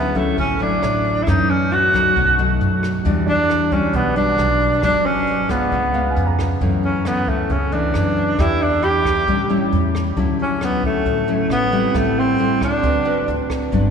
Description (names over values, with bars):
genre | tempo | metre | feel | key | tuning
bossa nova | 135 BPM | 4/4 | straight | D major | A4 = 442 Hz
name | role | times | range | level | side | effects
breathy tenor saxophone | melody | 0.0-13.5 s | A3 to G4 | -19 LUFS | right 1 dB | none
clear baby grand piano | accompaniment | 0.0-9.5 s | C#5 to D6 | -33 LUFS | right 3 dB | none
nylon-string guitar | accompaniment | 0.0-13.9 s | F#2 to B4 | -22 LUFS | left 2 dB | none
upright bass | bass | 0.0-13.9 s | G1 to F#2 | -23 LUFS | equal | none
jazz brush drum kit | drums | 0.2-13.8 s | hi-hat, kick drum, rim click | -28 LUFS | equal | none
room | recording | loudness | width
wet cathedral reverb, RT60 4.3 s | recorded in a church or concert hall | -16 LUFS | side -7 dB against mid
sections
0.0-13.7 A section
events
none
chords
0.0 Dmaj9; 1.3 F#m7; 2.2 B7; 3.1 Em9; 4.8 G#m7b5; 5.7 C#7; 6.6 F#m7; 8.4 Em7; 9.3 A7; 10.2 Dmaj9; 11.9 Am7; 12.8 D6